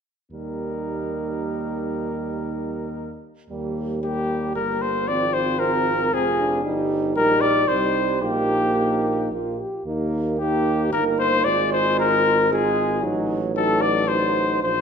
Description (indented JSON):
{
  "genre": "classical, brass quintet",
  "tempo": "113 BPM",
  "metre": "3/4",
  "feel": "rubato",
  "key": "Eb major",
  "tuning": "A4 = 437 Hz",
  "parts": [
    { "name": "mellow trumpet", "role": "melody", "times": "0.3-14.8 s", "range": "G4 to D5", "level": "-23 LUFS", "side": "left 6 dB", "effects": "none" },
    { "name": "mellow flugelhorn", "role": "second line", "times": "0.3-14.8 s", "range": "Eb4 to D5", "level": "-27 LUFS", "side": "right 9 dB", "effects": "none" },
    { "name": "clear trombone", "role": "accompaniment", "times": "0.3-14.8 s", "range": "F3 to Bb3", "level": "-28 LUFS", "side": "right 5 dB", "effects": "none" },
    { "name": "warm French horn", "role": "accompaniment", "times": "0.3-14.8 s", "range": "Bb3 to G4", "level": "-28 LUFS", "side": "left 2 dB", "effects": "none" },
    { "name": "warm bass trombone", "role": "bass", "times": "0.3-14.8 s", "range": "F1 to Eb2", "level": "-29 LUFS", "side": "right 2 dB", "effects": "none" }
  ],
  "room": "wet recital hall reverb, RT60 1.7 s",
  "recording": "none",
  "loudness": "-20 LUFS",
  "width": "side -6 dB against mid",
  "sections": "0.3-3.5 A section; 3.5-14.8 B section",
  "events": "none",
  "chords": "0.3 Eb; 5.1 Fm/Ab; 6.7 Eb/G; 7.7 Cm; 8.2 Eb/Bb; 9.3 Bb5; 9.9 Eb; 11.5 Fm/Ab; 13.0 Adim7",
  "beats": "| 0.32 0.86 1.38 | 1.90 2.41 2.95 | 3.50 4.04 4.56 | 5.08 5.61 6.14 | 6.65 7.17 7.68 | 8.22 8.77 9.32 | 9.86 10.40 10.93 | 11.46 11.99 12.52 | 13.04 13.56 14.08 | 14.62"
}